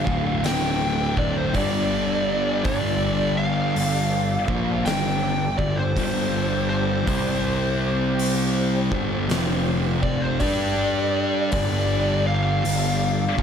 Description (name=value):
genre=stoner and doom metal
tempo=54 BPM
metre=4/4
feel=swing 66% on 8ths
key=unclear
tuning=A4 = 439 Hz
part: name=fuzz lead guitar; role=melody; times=0.0-13.4 s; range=C5 to G5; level=-26 LUFS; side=equal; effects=distortion, tape echo
part: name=bright tonewheel organ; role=sustained chords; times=0.0-13.4 s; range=D3 to D5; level=-34 LUFS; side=equal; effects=overdrive, chorus vibrato, slow rotary speaker
part: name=thick fuzz guitar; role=riff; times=0.0-13.4 s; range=D2 to G4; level=-26 LUFS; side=left 10 dB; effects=distortion
part: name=thick fuzz guitar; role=riff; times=0.0-13.4 s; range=D2 to G4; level=-27 LUFS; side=right 10 dB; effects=distortion
part: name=fuzz picked electric bass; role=bass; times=0.0-13.4 s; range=D1 to G2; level=-27 LUFS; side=equal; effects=overdrive
part: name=oversized low-tuned drum kit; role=drums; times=0.1-13.4 s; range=hi-hat, kick drum, snare drum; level=-29 LUFS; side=equal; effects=none
room=light reverb, small room ambience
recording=none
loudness=-20 LUFS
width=side -8 dB against mid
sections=0.0-13.4 A section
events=none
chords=0.0 D5; 1.5 G5; 7.1 C5; 8.7 G5; 9.3 F5; 10.4 G5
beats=0.44 1.55 | 2.65 3.76 4.86 5.97 | 7.08 8.19 9.30 10.42 | 11.53 12.65